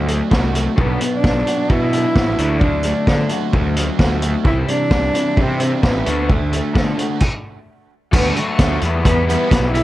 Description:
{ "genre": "indie rock", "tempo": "131 BPM", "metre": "4/4", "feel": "straight", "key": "D mixolydian", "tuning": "A4 = 440 Hz", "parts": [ { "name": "dark cello", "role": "melody", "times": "0.0-9.8 s", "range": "A3 to E4", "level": "-22 LUFS", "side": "equal", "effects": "analog delay" }, { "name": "overdriven semi-hollow guitar", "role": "riff", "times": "0.0-9.8 s", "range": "B2 to F#4", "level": "-25 LUFS", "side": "right 8 dB", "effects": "analog chorus" }, { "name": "raw garage guitar", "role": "riff", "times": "0.0-9.8 s", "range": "E3 to F#4", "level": "-24 LUFS", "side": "left 6 dB", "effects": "overdrive" }, { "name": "fuzz picked electric bass", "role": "bass", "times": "0.0-9.8 s", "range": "A1 to D3", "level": "-21 LUFS", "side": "equal", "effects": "overdrive" }, { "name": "vintage drum kit", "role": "drums", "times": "0.1-9.8 s", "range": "crash cymbal, hi-hat, kick drum, snare drum", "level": "-18 LUFS", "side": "equal", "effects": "none" } ], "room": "light reverb", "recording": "none", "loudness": "-14 LUFS", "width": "side -15 dB against mid", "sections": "0.0-8.1 A section; 8.1-9.8 B section", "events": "stop 7.2-8.1", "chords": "0.0 D; 0.8 Bm; 2.4 D; 4.5 Cadd9; 6.1 D; 8.8 Em", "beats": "0.32 | 0.78 1.24 1.70 2.16 | 2.62 3.08 3.54 4.00 | 4.46 4.92 5.38 5.84 | 6.29 6.75 7.21 7.67 | 8.13 8.59 9.05 9.51" }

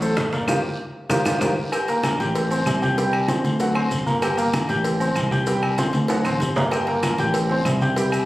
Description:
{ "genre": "latin, salsa", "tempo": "192 BPM", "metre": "4/4", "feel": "straight", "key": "G minor", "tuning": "A4 = 441 Hz", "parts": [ { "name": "clear concert grand piano", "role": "accompaniment", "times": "0.0-8.2 s", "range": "F#3 to G6", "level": "-23 LUFS", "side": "equal", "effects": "none" }, { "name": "fingered electric bass", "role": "bass", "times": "0.0-8.3 s", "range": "G1 to D2", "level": "-24 LUFS", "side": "equal", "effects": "none" }, { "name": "congas", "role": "percussion", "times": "0.0-8.3 s", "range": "none", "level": "-29 LUFS", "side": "equal", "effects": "none" }, { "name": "maracas", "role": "percussion", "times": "0.0-8.3 s", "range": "none", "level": "-38 LUFS", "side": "right 2 dB", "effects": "none" }, { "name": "bongos and cowbell", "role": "percussion", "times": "0.2-8.1 s", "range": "none", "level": "-30 LUFS", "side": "equal", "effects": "none" }, { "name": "claves", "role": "percussion", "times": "0.2-8.3 s", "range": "none", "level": "-34 LUFS", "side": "equal", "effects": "none" }, { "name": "guiro", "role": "percussion", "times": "0.2-8.3 s", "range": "none", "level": "-37 LUFS", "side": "left 1 dB", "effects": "none" }, { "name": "timbales and agogo bells", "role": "percussion", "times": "0.2-8.3 s", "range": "none", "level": "-28 LUFS", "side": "right 1 dB", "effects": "none" } ], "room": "wet large studio reverb, RT60 1.4 s", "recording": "recorded on a phone in the room, club reverb", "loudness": "-19 LUFS", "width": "side -17 dB against mid", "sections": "0.0-1.7 A section; 1.7-8.3 B section", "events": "band accent 0.5-1.7; drum fill 1.0-1.7, 6.1-6.7", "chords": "0.5 Gm7; 1.7 Gmadd9; 2.4 Am7; 3.0 C5; 3.6 D7; 4.2 Gmadd9; 4.9 Am7; 5.5 C5; 6.1 D7; 6.7 Gmadd9; 7.3 Am7", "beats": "0.17 | 0.48 0.80 1.11 1.42 | 1.73 2.04 2.36 2.67 | 2.98 3.29 3.60 3.92 | 4.23 4.54 4.85 5.16 | 5.48 5.79 6.10 6.41 | 6.72 7.04 7.35 7.66 | 7.97" }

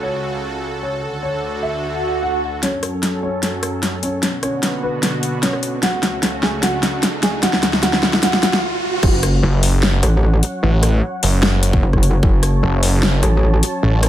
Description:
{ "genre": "heavy wobble dubstep", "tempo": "150 BPM", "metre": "4/4", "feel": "half-time", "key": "F# minor", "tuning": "A4 = 438 Hz", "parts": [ { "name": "dark concert grand piano", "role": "melody", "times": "0.0-8.6 s", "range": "B3 to G#5", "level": "-24 LUFS", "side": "equal", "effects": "ping-pong delay" }, { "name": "supersaw pad", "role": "sustained chords", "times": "0.0-14.1 s", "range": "C#2 to A5", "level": "-25 LUFS", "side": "right 1 dB", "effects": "sidechain pumping, low-pass filter" }, { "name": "swell and riser", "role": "sound effects", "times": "1.9-9.0 s", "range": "none", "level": "-25 LUFS", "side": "right 3 dB", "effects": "none" }, { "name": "dubstep drum kit", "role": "drums", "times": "2.6-14.1 s", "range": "crash cymbal, hi-hat, rim click, snare drum", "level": "-18 LUFS", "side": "left 1 dB", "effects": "low-pass filter on snare, studio reverb, low-pass filter on hats, low-pass filter on cymbals" }, { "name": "metallic wobble bass", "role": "bass", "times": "9.0-13.6 s", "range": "F#1 to A1", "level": "-15 LUFS", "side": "equal", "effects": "chorus, overdrive" }, { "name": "electronic kick drum", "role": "drums", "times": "9.0-9.1, 11.7-12.3 s", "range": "none", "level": "-16 LUFS", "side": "equal", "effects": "studio reverb" }, { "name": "snarling distorted saw bass", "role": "bass", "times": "9.4-14.1 s", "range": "F#1 to A1", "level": "-14 LUFS", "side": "equal", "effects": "distortion, overdrive" } ], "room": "little or no reverb", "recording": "faint mains hum", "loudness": "-15 LUFS", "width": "side -12 dB against mid", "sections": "0.0-2.6 A section; 2.6-9.0 B section; 9.0-14.1 C section", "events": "swell 1.9-2.6; build-up 2.6-9.0; drum fill 2.6-8.6; riser 2.6-9.0; filter sweep on supersaw synth 2.6-9.0; stop 8.6-9.0; drop 9.0-14.1", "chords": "0.0 F#m/C#; 1.0 D; 2.6 F#m; 4.2 Bm; 5.8 F#m/C#; 7.4 D; 9.0 F#5", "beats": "0.23 0.63 | 1.03 1.43 1.83 2.23 | 2.63 3.03 3.43 3.83 | 4.23 4.63 5.03 5.43 | 5.83 6.23 6.63 7.03 | 7.43 7.83 8.23 8.63 | 9.03 9.43 9.83 10.23 | 10.63 11.03 11.43 11.83 | 12.23 12.63 13.03 13.43 | 13.83" }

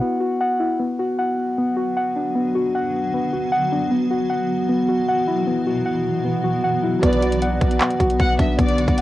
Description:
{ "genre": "hip hop, trap", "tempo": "154 BPM", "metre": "4/4", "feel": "half-time", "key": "B minor", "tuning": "A4 = 440 Hz", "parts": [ { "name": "muted felt-like synth keys", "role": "arpeggios", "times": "0.0-9.0 s", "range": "B3 to F#5", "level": "-20 LUFS", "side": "left 1 dB", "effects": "chorus, cassette tape, analog delay" }, { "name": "granular cloud pad", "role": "sustained chords", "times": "1.8-9.0 s", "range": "B2 to F#4", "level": "-26 LUFS", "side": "right 1 dB", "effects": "built-in reverb, cassette tape" }, { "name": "warm studio violin section", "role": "second line", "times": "7.0-9.0 s", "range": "D5 to F#5", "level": "-26 LUFS", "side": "left 1 dB", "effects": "cassette tape, analog delay" }, { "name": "dark grand piano", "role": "accompaniment", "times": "7.0-9.0 s", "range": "F#3 to B4", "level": "-26 LUFS", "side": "right 4 dB", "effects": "cassette tape" }, { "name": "long sustained 808-style bass", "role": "bass", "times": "7.0-9.0 s", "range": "B1", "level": "-23 LUFS", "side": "equal", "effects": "none" }, { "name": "trap drum kit", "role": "drums", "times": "7.0-9.0 s", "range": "handclaps, hi-hat, kick drum", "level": "-20 LUFS", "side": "equal", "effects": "cassette tape" } ], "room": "little or no reverb", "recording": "home recording on cassette", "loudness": "-18 LUFS", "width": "side -15 dB against mid", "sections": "0.8-9.0 A section", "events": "break 0.0-0.8", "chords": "0.0 Esus2/B; 0.8 Bm; 3.9 Esus2/B; 7.0 Bm", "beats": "0.01 0.41 | 0.80 1.18 1.57 1.96 | 2.35 2.74 3.13 3.52 | 3.91 4.30 4.69 5.08 | 5.47 5.86 6.25 6.64 | 7.03 7.42 7.81 8.20 | 8.59 8.98" }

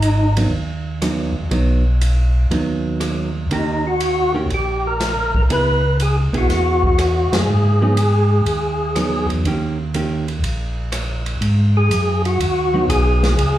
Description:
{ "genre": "soul jazz organ trio", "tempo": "121 BPM", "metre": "4/4", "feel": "swing 69% on 8ths", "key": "G# minor", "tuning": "A4 = 436 Hz", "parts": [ { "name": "percussive tonewheel organ", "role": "melody", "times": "0.0-0.3, 3.5-13.6 s", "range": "D#4 to B4", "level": "-19 LUFS", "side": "left 1 dB", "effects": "slow rotary speaker, overdrive, chorus vibrato, plate reverb, slapback echo" }, { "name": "mellow tonewheel organ", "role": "bass", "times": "0.0-13.6 s", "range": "G#1 to G#2", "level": "-18 LUFS", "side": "equal", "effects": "slow rotary speaker" }, { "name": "swinging big-band drum kit", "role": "drums", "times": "0.0-13.5 s", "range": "hi-hat, kick drum, ride cymbal, rim click, snare drum", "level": "-26 LUFS", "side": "equal", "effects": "none" }, { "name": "hollow-body jazz guitar", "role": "accompaniment", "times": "0.4-13.4 s", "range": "D#3 to G#4", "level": "-22 LUFS", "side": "right 2 dB", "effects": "slapback echo" } ], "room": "light reverb", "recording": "live gig heard through the venue's PA, club reverb", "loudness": "-16 LUFS", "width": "side -13 dB against mid", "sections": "0.0-11.4 A section; 11.4-13.6 B section", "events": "band accent 7.2; tonewheel organ solo 11.4-13.6", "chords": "0.0 G#m7; 3.5 D#7; 5.5 C#m7; 7.5 G#m7; 9.5 D#7; 11.4 G#m7", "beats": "0.02 0.52 1.02 | 1.52 2.02 2.52 3.02 | 3.51 4.01 4.51 5.00 | 5.50 5.99 6.49 6.98 | 7.48 7.97 8.47 8.96 | 9.45 9.95 10.44 10.93 | 11.42 11.91 12.40 12.89 | 13.38" }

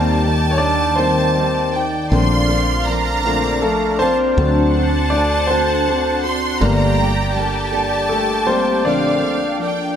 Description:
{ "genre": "six-eight pop ballad", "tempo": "53 BPM (dotted quarters)", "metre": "6/8", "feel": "straight", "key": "Bb major", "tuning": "A4 = 438 Hz", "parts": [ { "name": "warm studio violin section", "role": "second line", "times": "0.0-10.0 s", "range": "F5 to C6", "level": "-21 LUFS", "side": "right 2 dB", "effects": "digital delay" }, { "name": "warm concert grand piano", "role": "accompaniment", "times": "0.0-10.0 s", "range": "D3 to D5", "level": "-19 LUFS", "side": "left 3 dB", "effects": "none" }, { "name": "lush unison pad", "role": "sustained chords", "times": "0.0-10.0 s", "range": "Eb3 to G5", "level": "-23 LUFS", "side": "left 1 dB", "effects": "chorus, phaser" }, { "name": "picked steel-string acoustic guitar", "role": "arpeggios", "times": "0.0-10.0 s", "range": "G2 to A4", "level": "-24 LUFS", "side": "right 2 dB", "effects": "none" }, { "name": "woody fretless electric bass", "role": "bass", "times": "0.0-10.0 s", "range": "G1 to Eb2", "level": "-21 LUFS", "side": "equal", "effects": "none" } ], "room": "light reverb, small room reverb", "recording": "none", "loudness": "-15 LUFS", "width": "side -8 dB against mid", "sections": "0.0-10.0 A section", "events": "grand piano solo 0.0-10.0", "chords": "0.0 Eb; 2.1 Bbmaj7; 4.4 D7; 6.6 Gmadd9; 8.9 Bbmaj7", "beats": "0.99 | 2.13 3.25 | 4.38 5.50 | 6.62 7.73 | 8.85" }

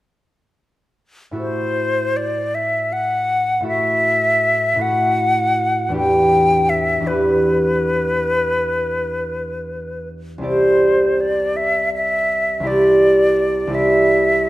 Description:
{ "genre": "classical, impressionist duo for flute and harp", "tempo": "53 BPM (dotted quarters)", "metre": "12/8", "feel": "rubato", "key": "A minor", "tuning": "A4 = 440 Hz", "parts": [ { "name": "concert harp", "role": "accompaniment", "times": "1.3-14.5 s", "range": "C2 to D5", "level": "-18 LUFS", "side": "right 1 dB", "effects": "none" }, { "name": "bright silver concert flute", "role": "melody", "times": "1.4-14.5 s", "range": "B4 to G5", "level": "-18 LUFS", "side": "left 1 dB", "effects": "none" } ], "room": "moderate scoring stage reverb, RT60 1.4 s", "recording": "none", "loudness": "-15 LUFS", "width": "side -16 dB against mid", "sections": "1.4-14.5 A section", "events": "none", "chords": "1.4 A5; 6.0 Em7; 10.5 Cadd9", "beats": "| 1.38 2.54 3.69 4.83 | 5.96 7.08 8.20 9.33 | 10.46 11.58 12.68 13.75" }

